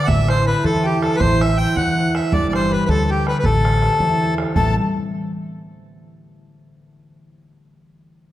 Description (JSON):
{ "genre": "celtic folk, Celtic jig", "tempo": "107 BPM (dotted quarters)", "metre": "6/8", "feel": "straight", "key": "A dorian", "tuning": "A4 = 439 Hz", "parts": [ { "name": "accordion", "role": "melody", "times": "0.0-4.7 s", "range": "G4 to G5", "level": "-22 LUFS", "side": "right 1 dB", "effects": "tape echo" }, { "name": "mellow mid whistle", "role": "second line", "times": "0.0-4.8 s", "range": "G5 to G6", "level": "-25 LUFS", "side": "left 5 dB", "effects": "none" }, { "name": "concert harp", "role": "accompaniment", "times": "0.0-6.0 s", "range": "A1 to C5", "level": "-20 LUFS", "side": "equal", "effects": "none" }, { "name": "upright bass", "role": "bass", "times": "0.1-4.8 s", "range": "G1 to E2", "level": "-22 LUFS", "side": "equal", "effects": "none" }, { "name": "bodhran", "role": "percussion", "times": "0.1-4.8 s", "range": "none", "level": "-26 LUFS", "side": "right 2 dB", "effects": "none" } ], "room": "wet recital hall reverb, RT60 1.6 s", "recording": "none", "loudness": "-16 LUFS", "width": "side -14 dB against mid", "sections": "0.0-4.6 A section; 4.6-5.7 B section", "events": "none", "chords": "0.1 Am; 2.3 G; 3.4 Am7" }